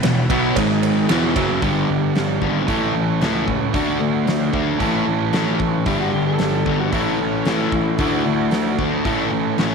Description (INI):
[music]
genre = classic rock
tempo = 113 BPM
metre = 4/4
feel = straight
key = A mixolydian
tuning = A4 = 443 Hz
[part]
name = overdriven tonewheel organ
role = sustained chords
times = 0.0-1.6 s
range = G#3 to E5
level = -30 LUFS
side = left 8 dB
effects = chorus vibrato, lush chorus
[part]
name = overdriven electric guitar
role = riff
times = 0.0-9.7 s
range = E2 to A4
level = -21 LUFS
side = right 11 dB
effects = none
[part]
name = sludgy distorted guitar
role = riff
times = 0.0-9.7 s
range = E2 to D4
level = -21 LUFS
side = left 9 dB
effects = overdrive
[part]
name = fuzz picked electric bass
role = bass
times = 0.0-9.7 s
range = E1 to D2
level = -26 LUFS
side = equal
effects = overdrive
[part]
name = huge arena drum kit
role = drums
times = 0.0-9.7 s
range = hi-hat, kick drum, ride cymbal, snare drum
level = -25 LUFS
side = equal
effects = none
[part]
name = cowbell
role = percussion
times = 0.0-1.5 s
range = none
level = -30 LUFS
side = right 12 dB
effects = none
[part]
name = overdriven slide guitar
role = second line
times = 5.9-8.5 s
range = C#4 to A4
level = -26 LUFS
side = left 9 dB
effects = none
[sound]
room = moderate echo chamber reverb, RT60 1.5 s, small room reverb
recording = 1960s-style stereo with parts hard left and right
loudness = -17 LUFS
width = side -5 dB against mid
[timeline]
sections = 0.0-1.6 A section; 1.6-9.7 B section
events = none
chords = 0.0 E5; 0.6 G#5; 1.1 E5; 1.6 G; 2.7 A; 3.7 D; 4.8 A; 5.9 G; 6.9 A; 8.0 D; 9.1 A